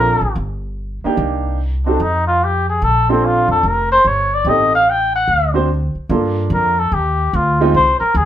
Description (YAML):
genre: jazz, small-group swing and bop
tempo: 146 BPM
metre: 4/4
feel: swing 65% on 8ths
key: unclear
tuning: A4 = 441 Hz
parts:
  - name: trumpet with cup mute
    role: melody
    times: 0.0-8.3 s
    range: C4 to G5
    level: -14 LUFS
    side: left 1 dB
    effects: none
  - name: warm upright piano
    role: accompaniment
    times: 0.0-7.7 s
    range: Ab3 to C5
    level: -18 LUFS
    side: right 3 dB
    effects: none
  - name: upright bass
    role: bass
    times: 0.0-8.3 s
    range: F1 to G2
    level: -19 LUFS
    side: equal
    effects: none
room: wet studio reverb, RT60 0.7 s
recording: band playing live in one room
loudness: -13 LUFS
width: side -11 dB against mid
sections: 0.0-6.1 A section; 6.1-8.3 B section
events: none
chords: 0.4 Gm; 1.2 Cm9; 2.0 F7sus2; 2.8 Bbmaj7; 4.5 Am7b5; 5.3 D7; 6.1 Gm7; 7.7 Abadd9/C (rootless)